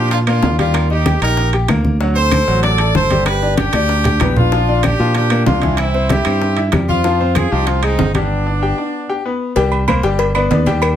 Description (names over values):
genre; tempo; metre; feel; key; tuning
latin, salsa; 191 BPM; 4/4; straight; C minor; A4 = 440 Hz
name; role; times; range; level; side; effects
brilliant horn section; melody; 0.0-9.2 s; Bb3 to D5; -18 LUFS; equal; none
bright baby grand piano; accompaniment; 0.0-10.9 s; E3 to G5; -20 LUFS; left 2 dB; none
modern bright fingered electric bass; bass; 0.0-11.0 s; G1 to Bb2; -17 LUFS; right 1 dB; none
bongos and cowbell; percussion; 0.1-11.0 s; none; -23 LUFS; left 5 dB; none
congas; percussion; 0.1-11.0 s; none; -21 LUFS; equal; none
timbales and agogo bells; percussion; 0.1-11.0 s; none; -23 LUFS; right 6 dB; none
claves; percussion; 0.3-11.0 s; none; -29 LUFS; left 3 dB; none
room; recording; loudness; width
light reverb; none; -13 LUFS; side -10 dB against mid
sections
0.0-9.6 A section; 9.6-11.0 B section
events
drum fill 3.7-4.5; break 8.3-9.6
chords
0.0 Bb; 0.7 Eb; 2.0 D7; 3.3 G; 4.5 Bb; 5.8 C; 7.0 Fm; 8.3 G; 9.6 C5; 10.2 G